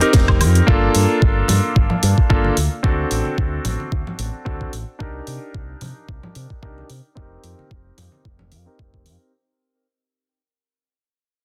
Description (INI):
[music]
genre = nu-disco, nu disco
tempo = 111 BPM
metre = 4/4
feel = swing 54% on 16ths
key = unclear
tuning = A4 = 440 Hz
[part]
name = bright electric grand piano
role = accompaniment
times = 0.0-9.3 s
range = Bb3 to Bb4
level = -24 LUFS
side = equal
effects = sidechain pumping, low-pass filter, analog delay
[part]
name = fingered electric bass with an envelope filter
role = bass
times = 0.0-9.2 s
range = F1 to C3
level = -22 LUFS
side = equal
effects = sidechain pumping
[part]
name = house drum kit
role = drums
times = 0.0-9.2 s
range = hi-hat, snare drum, woodblock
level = -26 LUFS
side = equal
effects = none
[part]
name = electronic kick drum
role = drums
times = 0.1-9.0 s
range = none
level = -20 LUFS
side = equal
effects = overdrive
[part]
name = congas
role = percussion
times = 1.5-8.5 s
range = none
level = -30 LUFS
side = equal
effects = none
[sound]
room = light reverb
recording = dense, heavily limited modern master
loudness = -18 LUFS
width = mono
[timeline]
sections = 0.0-9.3 A section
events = fade-out 0.0-9.3; filter sweep on electric grand piano 0.0-9.3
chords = 0.0 F7sus4; 0.7 Gm7; 2.6 D7; 5.0 Cm9; 7.2 F7sus4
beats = 0.14 | 0.68 1.22 1.76 2.30 | 2.84 3.38 3.92 4.46 | 5.00 5.54 6.08 6.62 | 7.17 7.71 8.25 8.79